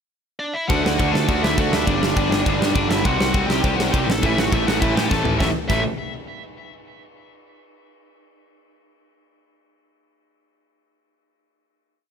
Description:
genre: punk rock.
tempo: 204 BPM.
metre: 4/4.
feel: straight.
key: unclear.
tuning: A4 = 440 Hz.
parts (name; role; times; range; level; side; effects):
high-gain lead guitar; melody; 0.4-5.8 s; D4 to A5; -26 LUFS; left 1 dB; distortion, ping-pong delay.
cranked stack guitar; riff; 0.7-5.8 s; G2 to D4; -25 LUFS; right 13 dB; overdrive.
distorted electric guitar; riff; 0.7-5.8 s; G2 to D4; -25 LUFS; left 17 dB; overdrive.
fuzz picked electric bass; bass; 0.7-5.8 s; G1 to A2; -24 LUFS; equal; overdrive.
big rock drum kit; drums; 0.7-5.8 s; crash cymbal, kick drum, ride cymbal, snare drum, toms; -22 LUFS; equal; none.
room: little or no reverb.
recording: none.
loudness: -17 LUFS.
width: side -7 dB against mid.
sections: 0.0-0.7 pickup bar; 0.7-5.4 chorus; 5.4-6.6 final chord.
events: drum fill 5.1.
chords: 0.0 Dsus2; 0.7 D; 1.9 G5; 3.0 C5; 4.1 A5.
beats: 0.10 0.40 | 0.69 0.99 1.28 1.58 | 1.87 2.17 2.46 2.76 | 3.05 3.34 3.64 3.93 | 4.22 4.52 4.81 5.11 | 5.40 5.69.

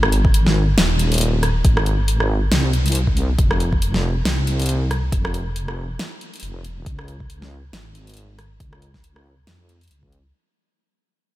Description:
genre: deep dubstep.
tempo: 138 BPM.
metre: 4/4.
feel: swing 57% on 16ths, half-time.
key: unclear.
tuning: A4 = 440 Hz.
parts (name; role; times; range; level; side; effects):
deep soft wobble bass; bass; 0.0-10.3 s; F1 to F2; -20 LUFS; equal; chorus.
deep house drum kit; drums; 0.0-10.2 s; hi-hat, rim click, snare drum; -23 LUFS; equal; none.
electronic kick drum; drums; 0.2-10.1 s; none; -19 LUFS; equal; none.
room: light reverb.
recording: none.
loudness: -16 LUFS.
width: side -16 dB against mid.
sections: 0.0-10.3 A section.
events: fade-out 0.0-10.3.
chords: none.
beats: 0.34 0.78 1.21 | 1.65 2.08 2.51 2.95 | 3.38 3.82 4.25 4.69 | 5.12 5.56 5.99 6.43 | 6.86 7.30 7.73 8.17 | 8.60 9.04 9.47 9.91.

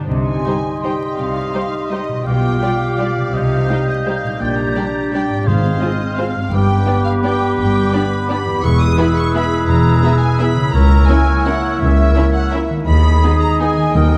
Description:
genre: classical, orchestral ballroom waltz.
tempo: 169 BPM.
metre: 3/4.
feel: uneven beats, rubato.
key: C minor, G# minor from 8.6 s.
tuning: A4 = 439 Hz.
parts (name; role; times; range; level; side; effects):
warm studio viola section; accompaniment; 0.0-13.7 s; G3 to F4; -28 LUFS; equal; none.
concert harp; arpeggios; 0.0-14.2 s; E2 to D5; -27 LUFS; equal; none.
clear clarinet; second line; 0.1-14.2 s; G4 to A#4; -27 LUFS; equal; none.
mellow hollow flute section; second line; 0.1-14.2 s; C6 to G6; -29 LUFS; equal; none.
warm oboe; second line; 0.1-14.2 s; B4 to F5; -28 LUFS; equal; none.
mellow French horn section; sustained chords; 0.1-14.2 s; G3 to F4; -26 LUFS; equal; none.
warm studio cello section; bass; 0.1-14.2 s; C#2 to C3; -23 LUFS; equal; none.
warm studio double bass section; bass; 0.1-14.2 s; E1 to D#2; -20 LUFS; equal; none.
warm studio violin section; melody; 0.3-14.2 s; D5 to D#6; -27 LUFS; equal; none.
rich studio violin section; second line; 0.5-13.7 s; G4 to E5; -33 LUFS; equal; none.
timpani; percussion; 5.5-6.0, 14.0-14.2 s; Ab2 to D#3; -24 LUFS; equal; none.
room: moderate concert hall reverb, RT60 2.3 s.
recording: dark, warm production, vinyl crackle.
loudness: -16 LUFS.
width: mono.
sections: 0.1-14.2 A section.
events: none.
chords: 0.1 Cm; 2.3 G7/B; 3.3 Cm; 4.4 Gm/Bb; 5.5 Fm/Ab; 6.5 G; 8.6 E; 10.7 A#dim/C#; 12.9 G#m/D#.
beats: | 0.09 0.46 0.83 | 1.19 1.54 1.91 | 2.27 2.62 3.00 | 3.35 3.70 4.07 | 4.41 4.76 5.12 | 5.47 5.82 6.18 | 6.52 6.86 7.23 | 7.58 7.93 8.29 | 8.63 8.98 9.34 | 9.68 10.03 10.39 | 10.73 11.08 11.45 | 11.80 12.16 12.52 | 12.87 13.23 13.60 | 13.95.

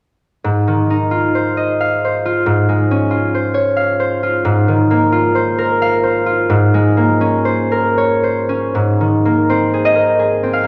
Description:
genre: classical, solo harp piece.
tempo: 72-93 BPM.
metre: 3/4.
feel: rubato.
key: Ab major.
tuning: A4 = 440 Hz.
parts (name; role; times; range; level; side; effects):
concert harp; solo; 0.4-10.7 s; Ab2 to F5; -15 LUFS; equal; none.
room: wet recital hall reverb, RT60 1.9 s.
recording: none.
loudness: -15 LUFS.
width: mono.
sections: 0.5-8.8 A section; 8.8-10.7 B section.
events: none.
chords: 0.5 Ab6; 2.5 Dbmaj7/Ab; 4.5 Ab69; 6.5 Bbm9/Ab; 8.8 Abadd9.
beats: | 0.45 1.13 1.80 | 2.47 3.13 3.78 | 4.45 5.13 5.82 | 6.50 7.21 7.96 | 8.76 9.48 10.19.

